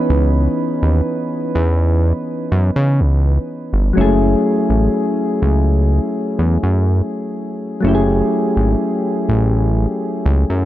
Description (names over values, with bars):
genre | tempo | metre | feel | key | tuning
contemporary R&B | 62 BPM | 4/4 | straight | unclear | A4 = 440 Hz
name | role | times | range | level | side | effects
soft electric-piano-like synth keys | accompaniment | 0.0-10.7 s | E3 to B4 | -18 LUFS | left 1 dB | chorus
fat analog bass | bass | 0.1-10.7 s | F#1 to C#3 | -14 LUFS | equal | none
room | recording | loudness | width
light reverb | none | -14 LUFS | side -14 dB against mid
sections
0.0-10.7 A section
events
none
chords
0.0 C#m7; 4.0 F#m7